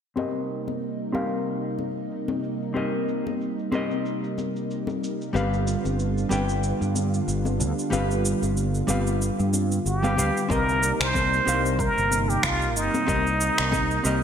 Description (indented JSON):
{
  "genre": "sunset chillout",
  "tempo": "93 BPM",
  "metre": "4/4",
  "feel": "swing 56% on 16ths",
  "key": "unclear",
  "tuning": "A4 = 440 Hz",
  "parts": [
    { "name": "hollow-body jazz guitar", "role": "accompaniment", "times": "0.2-14.2 s", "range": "G3 to G5", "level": "-29 LUFS", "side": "moving between left 4 dB and right 2 dB", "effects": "auto-pan, vintage 12-bit sampler grit, low-pass filter, digital delay" },
    { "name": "lush unison pad", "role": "sustained chords", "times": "0.2-14.2 s", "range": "C3 to F4", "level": "-29 LUFS", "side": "right 1 dB", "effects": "chorus" },
    { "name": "electronic cabasa and finger snaps", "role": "drums", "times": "0.2-14.2 s", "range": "none", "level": "-30 LUFS", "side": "right 1 dB", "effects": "overdrive, low-pass filter on perc, low-pass filter on snare, low-pass filter on room, gated reverb" },
    { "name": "congas", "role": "percussion", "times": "0.2-13.9 s", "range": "none", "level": "-34 LUFS", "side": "left 6 dB", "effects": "none" },
    { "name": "fretless electric bass", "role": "bass", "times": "5.3-14.2 s", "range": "G1 to G2", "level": "-26 LUFS", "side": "equal", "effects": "analog chorus" },
    { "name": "trumpet with plunger mute", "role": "melody", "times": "9.9-14.2 s", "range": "Eb4 to C5", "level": "-24 LUFS", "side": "right 1 dB", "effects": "digital delay" },
    { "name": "electronic kick drum", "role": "drums", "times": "10.5-13.9 s", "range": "none", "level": "-30 LUFS", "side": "equal", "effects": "overdrive" }
  ],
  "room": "moderate lush hall reverb, RT60 2.2 s",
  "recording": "bright 1980s-style digital production",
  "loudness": "-22 LUFS",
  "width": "side -8 dB against mid",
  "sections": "0.2-10.5 A section; 10.5-14.2 B section",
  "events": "filter sweep on drum 0.2-10.5; filter sweep on hollow-body jazz guitar 0.2-10.5",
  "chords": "0.2 Cm7; 5.3 G7; 10.5 Cm7",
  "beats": "| 0.18 0.82 1.47 2.11 | 2.76 3.40 4.05 4.69 | 5.34 5.98 6.63 7.27 | 7.92 8.56 9.21 9.85 | 10.50 11.14 11.79 12.44 | 13.08 13.72"
}